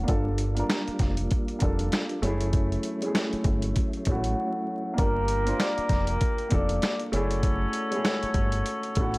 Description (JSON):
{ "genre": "hip hop, boom-bap hip-hop", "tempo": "98 BPM", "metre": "4/4", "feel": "swing 60% on 16ths", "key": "unclear", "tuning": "A4 = 440 Hz", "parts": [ { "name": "dark upright piano", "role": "accompaniment", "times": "0.0-9.2 s", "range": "Ab3 to Bb4", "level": "-31 LUFS", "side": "equal", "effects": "cassette tape, high-pass filter, low-pass filter" }, { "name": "mellow tonewheel organ", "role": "sustained chords", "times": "0.0-5.0 s", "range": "F#3 to F4", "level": "-34 LUFS", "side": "equal", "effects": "chorus vibrato, fast rotary speaker, high-pass filter, low-pass filter" }, { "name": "deep dub fingered electric bass", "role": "bass", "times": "0.0-9.2 s", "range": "F1 to A1", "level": "-28 LUFS", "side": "equal", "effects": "none" }, { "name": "dusty soul sampler-style drum kit", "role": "drums", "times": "0.1-9.2 s", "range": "hi-hat, kick drum, snare drum", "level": "-27 LUFS", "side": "equal", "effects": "none" }, { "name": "vibraphone with soft mallets", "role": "melody", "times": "5.0-7.0 s", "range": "Bb4 to D6", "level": "-31 LUFS", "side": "left 1 dB", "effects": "high-pass filter, low-pass filter, analog delay" }, { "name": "warm horn section", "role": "stabs", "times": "5.0-9.2 s", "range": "Bb3 to C#5", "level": "-32 LUFS", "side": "equal", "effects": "high-pass filter, low-pass filter, analog delay" } ], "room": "little or no reverb", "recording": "dry, gritty hardware recording, vinyl crackle", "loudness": "-24 LUFS", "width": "side -23 dB against mid", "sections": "0.0-5.0 A section; 5.0-9.2 B section", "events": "break 4.4-5.0", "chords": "0.1 Gm7; 2.2 F#m7; 5.0 Gm7; 7.1 F#m7" }